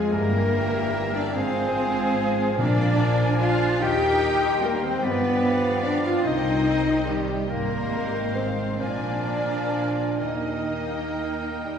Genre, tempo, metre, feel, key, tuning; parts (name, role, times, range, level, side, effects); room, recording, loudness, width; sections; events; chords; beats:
classical, slow romantic movement for symphony orchestra; 41-50 BPM (dotted quarters); 6/8; rubato; Eb major; A4 = 442 Hz
warm symphonic violin section; melody; 0.0-11.8 s; Eb5 to Ab5; -37 LUFS; left 3 dB
bright clarinet; second line; 0.0-11.8 s; G4 to G5; -33 LUFS; equal
warm symphonic violin section; second line; 0.0-11.8 s; G4 to G5; -34 LUFS; left 1 dB
rich symphonic viola section; accompaniment; 0.0-11.8 s; Eb3 to Eb4; -33 LUFS; right 1 dB
mellow French horn section; sustained chords; 0.0-11.8 s; G3 to G4; -26 LUFS; left 2 dB
concert harp; arpeggios; 0.0-11.8 s; F2 to Ab5; -35 LUFS; left 3 dB
warm symphonic cello section; bass; 0.0-11.8 s; G3 to G4; -30 LUFS; right 1 dB
clear oboe; second line; 0.1-11.8 s; Ab4 to D5; -35 LUFS; right 1 dB
concert flute; second line; 0.1-11.8 s; F5 to Ab5; -35 LUFS; equal
warm bassoon; accompaniment; 0.1-11.8 s; Eb3 to G3; -34 LUFS; right 2 dB
warm symphonic double bass section; bass; 0.1-11.8 s; G1 to G2; -30 LUFS; right 1 dB
timpani; percussion; 2.6-3.8 s; Bb2; -28 LUFS; left 2 dB
wet concert hall reverb, RT60 2.4 s; heard from further back in the room; -21 LUFS; side -7 dB against mid
0.0-11.8 A section
0.1 Edim/G; 1.3 Fm/Ab; 2.6 Bb7; 3.8 Eb; 5.0 G7; 6.2 Cm; 7.5 Fm7/Ab; 8.8 Bb7; 10.2 Eb
| 0.12 1.35 | 2.59 3.81 | 5.03 6.24 | 7.49 8.80 | 10.20 11.65